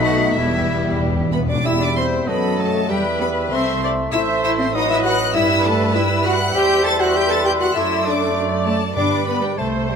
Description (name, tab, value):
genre	quick classical-period movement for symphony orchestra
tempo	98 BPM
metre	2/4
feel	rubato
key	E minor, G major from 6.6 s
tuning	A4 = 440 Hz
part	rich chamber violin section	melody	0.0-10.0 s	E5 to A6	-26 LUFS	left 3 dB	none
part	clear oboe	second line	0.0-10.0 s	E4 to E5	-28 LUFS	right 2 dB	none
part	concert flute	second line	0.0-10.0 s	A5 to B6	-27 LUFS	left 3 dB	none
part	dark clarinet	second line	0.0-10.0 s	G4 to A5	-28 LUFS	left 1 dB	none
part	rich chamber violin section	second line	0.0-10.0 s	D#4 to A5	-30 LUFS	left 1 dB	none
part	clear bassoon	accompaniment	0.0-10.0 s	F#3 to A3	-25 LUFS	right 1 dB	none
part	rich chamber viola section	accompaniment	0.0-10.0 s	G3 to E5	-25 LUFS	equal	none
part	warm French horn section	sustained chords	0.0-10.0 s	G3 to A4	-25 LUFS	left 5 dB	none
part	clear chamber double bass section	bass	0.0-10.0 s	E1 to G2	-26 LUFS	right 4 dB	none
part	rich symphonic cello section	bass	0.0-10.0 s	E2 to A4	-24 LUFS	right 2 dB	none
part	timpani	percussion	0.4-1.6, 9.0-9.5 s	E2 to G2	-25 LUFS	left 1 dB	none
room	moderate scoring stage reverb, RT60 1.8 s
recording	close, detailed microphones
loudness	-16 LUFS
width	side -6 dB against mid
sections	0.0-1.7 A section; 1.7-10.0 B section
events	timpani fill 0.4-1.7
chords	0.4 Em; 2.3 D#dim/F#; 2.9 Em; 3.5 Am/C; 4.1 Am; 4.7 B7/A; 5.4 Em/G; 6.6 C/E; 7.8 D7/F#; 9.0 G